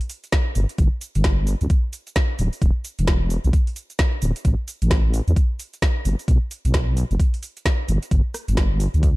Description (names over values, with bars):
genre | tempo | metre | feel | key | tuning
UK garage, two-step garage | 131 BPM | 4/4 | swing 61% on 16ths | unclear | A4 = 440 Hz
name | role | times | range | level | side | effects
garage drum kit | drums | 0.0-9.1 s | cabasa, hi-hat, rim click, snare drum | -28 LUFS | equal | overdrive
electronic kick drum | drums | 0.3-9.1 s | none | -19 LUFS | equal | overdrive
deep soft wobble bass | bass | 0.6-9.2 s | D1 to E2 | -19 LUFS | equal | chorus, sidechain pumping
room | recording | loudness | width
little or no reverb | dark, warm production | -19 LUFS | side -21 dB against mid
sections
0.0-9.2 A section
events
none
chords
none